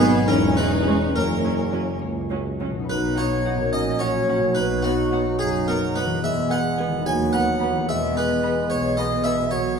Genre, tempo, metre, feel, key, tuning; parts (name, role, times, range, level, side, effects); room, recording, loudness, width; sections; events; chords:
cinematic, playful, whimsical film cue; 72 BPM (dotted quarters); 6/8; straight; B major; A4 = 436 Hz
harpsichord; melody; 0.0-9.8 s; F#4 to G#5; -28 LUFS; right 1 dB
muted chamber violin section; melody; 0.0-9.3 s; B3 to B5; -34 LUFS; left 5 dB
muted chamber violin section; second line; 0.0-9.3 s; D#4 to B4; -36 LUFS; left 3 dB
muted studio viola section; accompaniment; 0.0-9.3 s; F#3 to D#4; -31 LUFS; right 2 dB
dark French horn section; sustained chords; 0.0-9.8 s; F#3 to D#4; -30 LUFS; left 4 dB
concert harp; arpeggios; 0.0-9.8 s; E2 to C#5; -27 LUFS; left 4 dB
mellow tuba; bass; 0.0-2.8 s; E1 to C#2; -27 LUFS; right 3 dB
muted chamber cello section; bass; 0.0-9.8 s; D#2 to C#4; -28 LUFS; right 4 dB
muted chamber double bass section; bass; 0.0-9.8 s; E1 to D#2; -30 LUFS; right 2 dB
mellow hollow small flute group; second line; 2.9-9.8 s; F#4 to G#5; -27 LUFS; equal
warm clarinet; second line; 2.9-9.8 s; B3 to D#4; -32 LUFS; left 2 dB
mellow bassoon; accompaniment; 2.9-9.8 s; F#3 to G#3; -27 LUFS; right 3 dB
wet scoring stage reverb, RT60 1.5 s; minimal, uncompressed stereo recording; -20 LUFS; side -6 dB against mid
0.0-2.9 A section; 2.9-9.8 B section
0.3 C#m/E; 1.1 F#; 2.9 B; 3.7 F#/A#; 4.6 B; 6.2 E; 7.1 B/D#; 7.9 E